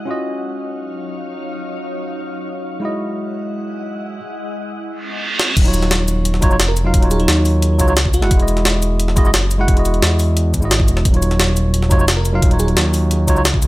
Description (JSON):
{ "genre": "liquid drum and bass", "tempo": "175 BPM", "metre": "4/4", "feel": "straight", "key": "unclear", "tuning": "A4 = 439 Hz", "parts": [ { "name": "bright tine electric piano", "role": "accompaniment", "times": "0.0-13.4 s", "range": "Gb3 to Gb5", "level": "-20 LUFS", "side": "right 1 dB", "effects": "none" }, { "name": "glassy FM pad", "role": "sustained chords", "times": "0.0-5.5 s", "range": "Gb3 to F#5", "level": "-28 LUFS", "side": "left 1 dB", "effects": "ensemble chorus, built-in reverb, sidechain pumping" }, { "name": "reverse cymbal", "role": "sound effects", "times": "5.0-5.6 s", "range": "none", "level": "-21 LUFS", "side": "right 3 dB", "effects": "none" }, { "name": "jungle sampler-style drum kit", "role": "drums", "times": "5.4-13.7 s", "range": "crash cymbal, hi-hat, shaker, snare drum", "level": "-19 LUFS", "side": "equal", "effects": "low-pass filter on snare, small room reverb, low-pass filter on hats, low-pass filter on cymbals, low-pass filter on perc" }, { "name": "smooth synth bass", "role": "bass", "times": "5.6-13.7 s", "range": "Eb1 to E2", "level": "-16 LUFS", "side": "equal", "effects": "none" }, { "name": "electronic kick drum", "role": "drums", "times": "5.6-13.6 s", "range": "none", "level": "-15 LUFS", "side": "equal", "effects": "overdrive, small room reverb" }, { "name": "bell-like FM electric piano", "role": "melody", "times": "6.7-8.3, 12.2-12.7 s", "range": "Eb4 to Bb4", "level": "-27 LUFS", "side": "right 2 dB", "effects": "chorus, tremolo, cassette tape, dub echo" } ], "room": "light reverb, digital ambience", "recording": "none", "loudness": "-14 LUFS", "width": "side -18 dB against mid", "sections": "0.0-5.6 A section; 5.6-13.7 B section", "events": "reverse cymbal 5.0-5.6; drum fill 5.4; drop 5.6-13.7", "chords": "0.1 Ebm9; 2.8 Emaj9; 5.6 Ebm9; 8.3 Emaj9; 11.1 Ebm9", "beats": "| 0.08 0.42 0.77 1.11 | 1.45 1.79 2.14 2.48 | 2.82 3.17 3.51 3.85 | 4.20 4.54 4.88 5.22 | 5.57 5.91 6.25 6.59 | 6.94 7.28 7.62 7.97 | 8.31 8.65 8.99 9.34 | 9.68 10.02 10.37 10.71 | 11.05 11.39 11.74 12.08 | 12.42 12.77 13.11 13.45" }